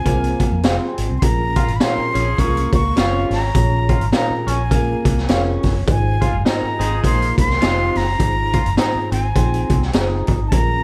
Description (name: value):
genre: uptempo 1960s-style soul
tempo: 103 BPM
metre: 4/4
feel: swing 59% on 8ths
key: Bb minor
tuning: A4 = 440 Hz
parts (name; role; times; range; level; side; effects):
- breathy concert flute; melody; 0.0-10.8 s; Ab5 to Db6; -26 LUFS; equal; tape echo
- mellow tine electric piano; accompaniment; 0.0-10.8 s; Ab2 to Eb5; -28 LUFS; equal; none
- clean electric guitar; riff; 0.1-10.5 s; Bb3 to F4; -30 LUFS; equal; analog chorus
- vintage muted fingered electric bass; bass; 0.1-10.8 s; F1 to F2; -23 LUFS; equal; none
- raw garage drum kit; drums; 0.1-10.7 s; hi-hat, kick drum, snare drum; -22 LUFS; equal; none
- electric guitar through a small old amp; stabs; 0.6-10.1 s; Eb4 to F5; -28 LUFS; equal; none
- warm saxophone section; second line; 1.6-8.0 s; C3 to Bb4; -28 LUFS; equal; none
room: moderate club reverb, RT60 0.7 s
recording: dark, warm production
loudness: -18 LUFS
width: mono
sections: 0.0-1.2 A section; 1.2-10.8 B section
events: none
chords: 0.0 Fm; 1.2 Bbm7; 5.9 Fm7